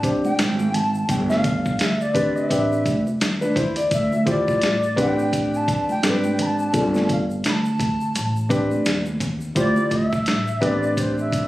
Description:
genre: hip hop, jazz-hop.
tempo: 85 BPM.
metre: 4/4.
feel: swing 59% on 16ths.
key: A minor.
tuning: A4 = 440 Hz.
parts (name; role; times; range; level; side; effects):
dark concert grand piano; accompaniment; 0.0-11.5 s; B3 to D5; -22 LUFS; left 1 dB; none.
dusty soul sampler-style drum kit; drums; 0.0-11.5 s; hi-hat, kick drum, snare drum; -24 LUFS; equal; none.
egg shaker and congas; percussion; 0.0-11.5 s; none; -30 LUFS; right 2 dB; none.
bright bansuri; melody; 0.3-11.5 s; C5 to B5; -25 LUFS; equal; slapback echo.
upright bass; bass; 0.4-11.3 s; F1 to D#2; -24 LUFS; equal; none.
room: light reverb, small room ambience.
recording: recorded on a phone in the room, studio reverb, compression.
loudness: -18 LUFS.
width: side -16 dB against mid.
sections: 0.0-11.5 A section.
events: none.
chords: 0.0 Am11; 1.1 Gsus4; 2.5 Am11; 3.9 Dm11; 5.0 Am11; 6.7 G9sus4; 8.1 Am11; 9.6 Dm11; 10.6 Am11.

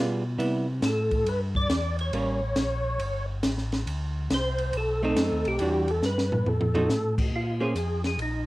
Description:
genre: soul jazz organ trio.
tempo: 139 BPM.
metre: 4/4.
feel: swing 66% on 8ths.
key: unclear.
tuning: A4 = 437 Hz.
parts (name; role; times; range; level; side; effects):
archtop guitar, miked and amplified; accompaniment; 0.0-2.4, 5.0-7.7 s; E3 to C5; -29 LUFS; right 2 dB; cassette tape, plate reverb.
mellow tonewheel organ; bass; 0.0-8.5 s; G1 to C3; -29 LUFS; equal; chorus vibrato, slow rotary speaker.
compact cocktail drum kit; drums; 0.4-8.3 s; crash cymbal, hi-hat, kick drum, ride cymbal, snare drum, toms; -30 LUFS; equal; none.
percussive tonewheel organ; melody; 0.9-8.5 s; Eb4 to D5; -28 LUFS; equal; slow rotary speaker, chorus vibrato, cassette tape, plate reverb.
room: moderate studio reverb, RT60 0.6 s.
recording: home recording on cassette.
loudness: -24 LUFS.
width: side -18 dB against mid.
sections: 0.0-7.3 A section; 7.3-8.5 B section.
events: drum fill 6.0-6.9; tonewheel organ solo 7.3-8.5.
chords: 0.4 Cmaj7; 2.1 A7b9; 3.9 Csus2; 4.7 B7b9; 5.6 Em9; 6.5 F7b9; 7.3 Bbm7.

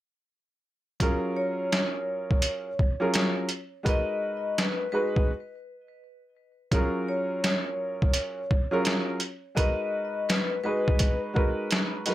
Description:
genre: hip hop, boom-bap hip-hop.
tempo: 84 BPM.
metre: 4/4.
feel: swing 62% on 16ths.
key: unclear.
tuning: A4 = 440 Hz.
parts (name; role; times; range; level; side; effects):
dark upright piano; accompaniment; 1.0-12.1 s; F#3 to B4; -29 LUFS; right 1 dB; none.
trip hop sampler-style drum kit; drums; 1.0-12.1 s; hi-hat, kick drum, snare drum; -25 LUFS; equal; overdrive.
vibraphone with medium hard mallets; melody; 1.4-11.2 s; B4 to D#5; -32 LUFS; left 2 dB; ping-pong delay.
room: light reverb.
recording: none.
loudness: -25 LUFS.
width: side -14 dB against mid.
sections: 1.0-6.7 A section; 6.7-12.1 B section.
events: break 5.3-6.7.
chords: 1.0 F#maj7; 3.9 G#m7; 6.7 F#maj7; 9.6 G#m7.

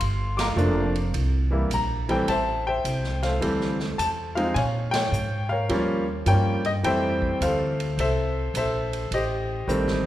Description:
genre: jazz piano trio.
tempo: 105 BPM.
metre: 4/4.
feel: swing 67% on 8ths.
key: F major.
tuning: A4 = 440 Hz.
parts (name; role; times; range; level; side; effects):
clear baby grand piano; melody; 0.0-10.1 s; Eb3 to D6; -24 LUFS; left 1 dB; none.
upright bass; bass; 0.0-10.0 s; F1 to Bb2; -26 LUFS; equal; none.
swinging big-band drum kit; drums; 0.0-10.1 s; hi-hat, kick drum, ride cymbal, snare drum; -34 LUFS; right 3 dB; none.
room: moderate concert hall reverb, RT60 2.1 s.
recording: recorded in a church or concert hall.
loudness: -22 LUFS.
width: side -13 dB against mid.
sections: 0.0-10.1 A section.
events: band accent 0.3, 4.8; drum fill 9.7-10.1.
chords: 0.0 Gm7; 1.1 C7; 2.3 Fmaj7; 4.6 Bbm7; 5.7 Eb9; 6.8 Fmaj7; 9.1 Am7b5.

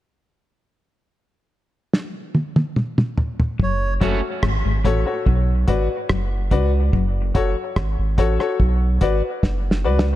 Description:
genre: dub reggae.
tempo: 72 BPM.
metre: 4/4.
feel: straight.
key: F# minor.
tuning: A4 = 440 Hz.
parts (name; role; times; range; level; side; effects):
cloth-damped thuddy drum kit; drums; 1.9-10.2 s; hi-hat, kick drum, rim click, snare drum, toms; -20 LUFS; equal; none.
melodica; melody; 3.6-3.9 s; C#5; -30 LUFS; right 4 dB; dub echo.
electric guitar at the edge of break-up; riff; 3.6-7.2 s; F#2 to C#3; -27 LUFS; left 5 dB; wide subtle chorus, dub echo.
soft dub sub bass; bass; 3.6-10.2 s; F#1 to C#2; -20 LUFS; equal; none.
electric guitar at the edge of break-up; accompaniment; 4.0-4.2 s; F#3 to F#4; -29 LUFS; right 4 dB; high-pass filter, dub echo.
warm upright piano; stabs; 4.0-10.0 s; F#4 to D5; -24 LUFS; left 5 dB; high-pass filter, dub echo.
room: light reverb, studio ambience.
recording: echo-heavy mix.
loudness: -18 LUFS.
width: side -14 dB against mid.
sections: 0.3-3.6 A section; 3.6-10.2 B section.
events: drum fill 1.9-3.6, 9.4-10.2.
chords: 0.3 N.C.; 3.6 F#m; 5.3 Bm; 6.9 F#m; 8.6 Bm.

